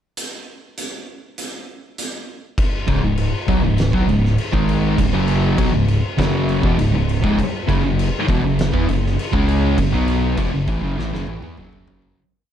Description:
stoner and doom metal; 100 BPM; 4/4; straight; C# minor; A4 = 442 Hz
oversized low-tuned drum kit; drums; 0.2-12.2 s; crash cymbal, hi-hat, kick drum, snare drum, toms; -23 LUFS; equal
overdriven electric guitar; riff; 2.9-12.2 s; C#2 to C#4; -25 LUFS; equal
thick fuzz guitar; riff; 2.9-12.2 s; C#2 to C#4; -22 LUFS; left 7 dB; distortion
thick fuzz guitar; riff; 2.9-12.2 s; C#2 to C#4; -22 LUFS; right 7 dB; distortion
smooth synth bass; bass; 2.9-12.1 s; C#1 to E2; -23 LUFS; equal; overdrive
light reverb; dark, warm production; -16 LUFS; side -10 dB against mid
0.2-2.6 pickup bar; 2.6-12.2 riff
fade-out 9.8-12.2; drum fill 11.0-12.2
0.2 N.C.; 2.6 C#5; 7.7 F#5
| 0.17 0.77 1.37 1.97 | 2.58 3.18 3.78 4.38 | 4.98 5.58 6.18 6.78 | 7.38 7.98 8.58 9.18 | 9.78 10.38 10.98 11.58

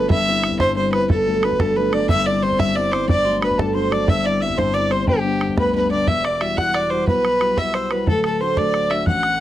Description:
celtic folk, Celtic jig; 120 BPM (dotted quarters); 6/8; straight; G major, E minor from 6.1 s; A4 = 439 Hz
rich fiddle; melody; 0.0-9.4 s; G4 to F#5; -20 LUFS; equal
concert harp; second line; 0.0-9.4 s; G4 to F#5; -27 LUFS; right 8 dB
dark concert grand piano; accompaniment; 0.0-9.4 s; D1 to F#4; -22 LUFS; left 3 dB
bodhran; percussion; 0.1-9.3 s; -20 LUFS; right 1 dB
breathy mellow mid whistle; second line; 2.1-9.3 s; G5 to F#6; -27 LUFS; left 4 dB
light reverb; dry, close 1970s-style studio recording; -16 LUFS; side -12 dB against mid
0.0-6.1 A section; 6.1-9.4 B section
0.1 C/G; 1.1 D/G; 2.1 C/G; 3.1 D/G; 4.1 C/G; 5.1 G; 6.1 Emadd9; 8.1 D
| 0.11 0.60 | 1.10 1.60 | 2.10 2.60 | 3.09 3.59 | 4.09 4.58 | 5.08 5.58 | 6.08 6.58 | 7.08 7.57 | 8.07 8.57 | 9.07

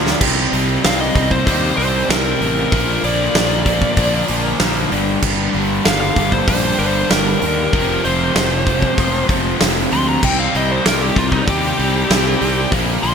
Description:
hard rock; 96 BPM; 4/4; straight; C minor; A4 = 440 Hz
warm analog pad; sustained chords; 0.0-13.1 s; F3 to Eb5; -30 LUFS; left 1 dB
cranked stack guitar; riff; 0.0-13.1 s; F2 to C4; -22 LUFS; left 11 dB; overdrive, analog chorus
cranked stack guitar; riff; 0.0-13.1 s; F2 to C4; -23 LUFS; right 10 dB; overdrive
cranked stack guitar; riff; 0.0-13.1 s; F2 to Eb4; -24 LUFS; equal; overdrive, phaser
fuzz fingered electric bass; bass; 0.0-13.1 s; F1 to Eb2; -22 LUFS; equal; overdrive
huge arena drum kit; drums; 0.1-13.1 s; crash cymbal, hi-hat, kick drum, snare drum; -19 LUFS; right 1 dB; gated reverb
biting lead guitar; melody; 0.8-13.1 s; Eb4 to C6; -21 LUFS; left 1 dB; overdrive
moderate lush hall reverb, RT60 2.0 s, small room ambience; bright 1980s-style digital production; -14 LUFS; side -6 dB against mid
0.2-13.1 A section
drum fill 0.0; lead electric guitar solo 0.2-13.1
0.2 Cm; 2.7 Bb; 4.9 Gm; 7.7 Fm; 10.2 Cm
| 0.20 0.83 1.46 2.09 | 2.72 3.35 3.97 4.60 | 5.23 5.85 6.48 7.10 | 7.73 8.36 8.98 9.60 | 10.23 10.85 11.48 12.10 | 12.72

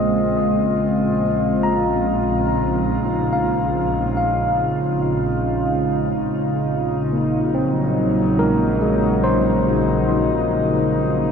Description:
ambient; 71 BPM; 4/4; straight; A4 = 443 Hz
warbly tape-like pad; sustained chords; 0.0-11.3 s; Db3 to F4; -19 LUFS; equal; chorus, built-in reverb, shimmer reverb
overdriven tine electric piano; arpeggios; 0.0-11.3 s; Ab3 to Bb5; -23 LUFS; left 2 dB; analog delay, shimmer reverb
bright symphonic double bass section; bass; 0.0-11.3 s; Bb1; -26 LUFS; equal
wet huge ambient reverb, RT60 7.1 s; dreamy mix soaked in reverb; -17 LUFS; side -6 dB against mid
0.0-11.3 A section
0.0 Dbmaj9/Bb; 6.3 Ebm9/Bb
0.36 1.21 2.05 | 2.90 3.74 4.59 5.43 | 6.28 7.12 7.97 8.81 | 9.66 10.50

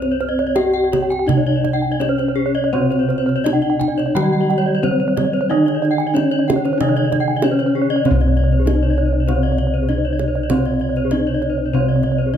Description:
Balinese gamelan; 83-98 BPM; 4/4; straight; C pelog; A4 = 436 Hz
gamelan-type bronze metallophone; melody; 0.0-12.4 s; C4 to G4-30c; -20 LUFS; left 3 dB
gamelan-type bronze metallophone; arpeggios; 0.0-12.4 s; Ab4-20c to Ab5-20c; -24 LUFS; left 4 dB
gamelan-type bronze metallophone; arpeggios; 0.0-12.3 s; Ab4-20c to Ab5-20c; -24 LUFS; right 9 dB
gamelan-type bossed gongs; bass; 0.0-12.4 s; C2 to Eb4-30c; -20 LUFS; equal
kendang; percussion; 0.0-12.4 s; -26 LUFS; right 6 dB
gamelan-type bronze metallophone; accompaniment; 2.7-12.4 s; C3 to G3-30c; -24 LUFS; right 2 dB
light reverb; close, detailed microphones; -15 LUFS; side -9 dB against mid
0.0-8.1 A section; 8.1-12.4 B section
0.56 1.29 2.01 | 2.73 3.45 4.15 4.83 | 5.50 6.16 6.80 7.43 | 8.05 8.66 9.28 9.89 | 10.50 11.11 11.73 12.34

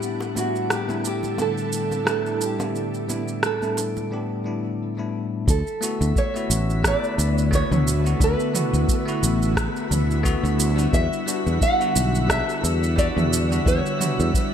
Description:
sunset chillout; 88 BPM; 4/4; swing 56% on 16ths; D major; A4 = 440 Hz
nylon-string guitar; melody; 0.0-14.5 s; F#4 to F#5; -27 LUFS; right 2 dB; digital delay
bell-like tine electric piano; accompaniment; 0.0-14.5 s; A2 to B4; -28 LUFS; moving between left 6 dB and right 4 dB; auto-pan, digital delay
ethereal airy pad; sustained chords; 0.0-14.5 s; D3 to A4; -29 LUFS; left 1 dB; ensemble chorus, built-in reverb
deep house drum kit; drums; 0.0-14.5 s; rim click, shaker, toms; -26 LUFS; right 2 dB; overdrive, small room ambience, gated reverb
drifting glass-harmonics texture; texture; 0.0-14.5 s; D4 to D7; -35 LUFS; left 3 dB; chorus, built-in reverb
bongos and congas; percussion; 0.2-4.1 s; -36 LUFS; right 1 dB
sustaining fretless electric bass; bass; 5.5-14.3 s; A1 to E2; -21 LUFS; equal
electronic kick drum; drums; 5.5-14.5 s; -23 LUFS; equal; small room ambience
light reverb; bright 1980s-style digital production; -20 LUFS; side -8 dB against mid
0.0-5.5 A section; 5.5-14.5 B section
break 4.1-5.5
0.0 A7sus4; 5.5 D69; 10.9 Em9
| 0.02 0.70 1.39 2.07 | 2.75 3.43 4.11 4.79 | 5.48 6.16 6.84 7.52 | 8.20 8.89 9.57 10.25 | 10.93 11.61 12.29 12.98 | 13.66 14.34

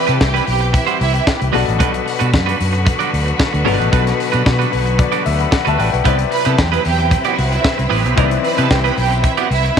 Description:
disco; 113 BPM; 4/4; straight; G major; A4 = 441 Hz
clear symphonic string section; second line; 0.0-1.2, 6.3-9.7 s; E4 to B5; -21 LUFS; right 9 dB; slapback echo
clear baby grand piano; accompaniment; 0.0-9.8 s; B2 to B5; -22 LUFS; left 14 dB
bright studio string section; sustained chords; 0.0-9.8 s; D3 to B4; -22 LUFS; left 2 dB
clean electric guitar; accompaniment; 0.1-9.8 s; G3 to D5; -22 LUFS; right 13 dB
fingered electric bass; bass; 0.1-9.7 s; G1 to C3; -18 LUFS; equal
tight funk drum kit; drums; 0.1-9.8 s; hi-hat, kick drum, snare drum; -19 LUFS; equal
light reverb, small room ambience; 1960s-style stereo with parts hard left and right; -13 LUFS; side -7 dB against mid
0.0-9.8 A section
grand piano fill 4.5-6.1
0.0 Cmaj7; 1.5 Gmaj7; 6.1 Cmaj7
0.21 0.74 1.27 | 1.80 2.33 2.87 3.40 | 3.93 4.46 4.99 5.52 | 6.05 6.58 7.12 7.65 | 8.18 8.71 9.24 9.77

